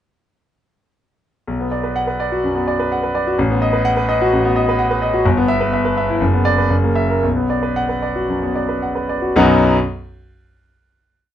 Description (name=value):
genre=classical, virtuoso piano study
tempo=110-129 BPM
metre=4/4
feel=rubato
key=B minor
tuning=A4 = 440 Hz
part: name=clear concert grand piano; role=solo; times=1.5-9.8 s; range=F#1 to F#5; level=-15 LUFS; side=equal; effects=none
room=moderate studio reverb, RT60 0.5 s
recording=dark, warm production, nothing above 10.5 kHz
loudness=-15 LUFS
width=side -10 dB against mid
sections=1.5-9.4 A section; 9.4-11.3 final chord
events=slowing down 4.3-9.4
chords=1.5 Bm; 3.4 B7/A; 5.2 Em/G; 6.2 Bm/F#; 6.7 F#7; 7.2 Bm; 9.4 B